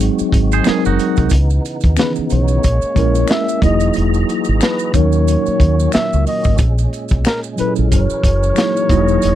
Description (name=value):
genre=R&B, neo-soul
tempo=91 BPM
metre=4/4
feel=swing 55% on 16ths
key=unclear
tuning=A4 = 440 Hz
part: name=mellow tine electric piano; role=accompaniment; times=0.0-9.4 s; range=A#2 to A#4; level=-18 LUFS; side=left 1 dB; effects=medium stereo tremolo
part: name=tonewheel organ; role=sustained chords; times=0.0-9.4 s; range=A#2 to A#5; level=-26 LUFS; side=right 2 dB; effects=overdrive, chorus vibrato, fast rotary speaker
part: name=deep dub fingered electric bass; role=bass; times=0.0-9.4 s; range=E1 to D#2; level=-15 LUFS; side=equal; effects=none
part: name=crunchy breakbeat drum kit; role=drums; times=0.0-9.4 s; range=hi-hat, kick drum, snare drum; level=-16 LUFS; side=equal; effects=none
part: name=maracas and finger snaps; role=percussion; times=0.0-9.4 s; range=none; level=-30 LUFS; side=right 1 dB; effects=none
part: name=twangy electric guitar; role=second line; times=0.5-1.3 s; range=D#4 to B#4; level=-21 LUFS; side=right 12 dB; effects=none
part: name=breathy flugelhorn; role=melody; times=2.0-9.4 s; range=A#4 to E5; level=-20 LUFS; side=equal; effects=none
room=little or no reverb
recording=dry, close 1970s-style studio recording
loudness=-13 LUFS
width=side -12 dB against mid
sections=0.0-9.4 A section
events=none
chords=0.0 G#7; 1.3 C#m9; 2.6 A#m7b5; 3.6 Emaj9#11; 4.9 D#m7; 6.6 A#m7b5; 7.9 F#7